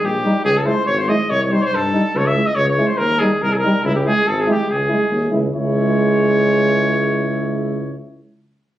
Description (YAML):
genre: balkan folk, Balkan brass band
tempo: 142 BPM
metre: 2/4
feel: swing 54% on 16ths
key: C# hungarian minor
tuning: A4 = 442 Hz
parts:
  - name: warm cornet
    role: melody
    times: 0.0-8.0 s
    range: E4 to E5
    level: -19 LUFS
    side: equal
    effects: none
  - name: mellow tuba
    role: bass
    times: 0.0-8.0 s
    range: G#1 to G2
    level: -21 LUFS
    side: equal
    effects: none
  - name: warm French horn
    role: accompaniment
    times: 0.2-8.0 s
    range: D#4 to E4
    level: -24 LUFS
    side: left 4 dB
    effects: none
  - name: warm euphonium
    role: accompaniment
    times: 0.2-8.0 s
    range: G3 to G#3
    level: -19 LUFS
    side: right 2 dB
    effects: none
room: light reverb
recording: recorded on a phone in the room, club reverb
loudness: -15 LUFS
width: side -13 dB against mid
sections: 0.0-5.5 A section; 5.5-7.2 B section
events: none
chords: 0.4 C#m; 1.3 Cm; 2.1 C#m; 3.0 D#; 3.8 C#m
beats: 0.02 | 0.45 0.87 | 1.30 1.72 | 2.15 2.57 | 2.99 3.42 | 3.84 4.26 | 4.68 5.11 | 5.53 5.95 | 6.36 6.78